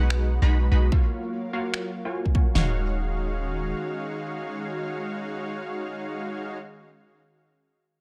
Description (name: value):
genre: future bass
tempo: 147 BPM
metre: 4/4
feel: swing 54% on 16ths, half-time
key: Eb minor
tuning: A4 = 439 Hz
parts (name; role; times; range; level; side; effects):
- airy breathy pad; sustained chords; 0.0-6.6 s; Eb3 to F5; -41 LUFS; equal; chorus, sidechain pumping
- concert harp; arpeggios; 0.0-1.9 s; none; barely audible; none; none
- supersaw stab; riff; 0.0-6.6 s; G#3 to B5; -33 LUFS; equal; sidechain pumping, low-pass filter, digital delay
- warm 808-style bass; bass; 0.0-3.7 s; Eb1 to B1; -25 LUFS; equal; sidechain pumping
- electronic finger snaps; drums; 0.1-1.8 s; none; -34 LUFS; equal; studio reverb
- pop drum kit; drums; 0.9-2.7 s; kick drum, snare drum, toms; -24 LUFS; equal; studio reverb
room: light reverb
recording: none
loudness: -27 LUFS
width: mono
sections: 0.0-2.6 A section; 2.6-5.8 B section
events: filter sweep on supersaw synth 0.0-2.6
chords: 0.0 B6; 0.9 Gbmaj7; 2.6 Ebm11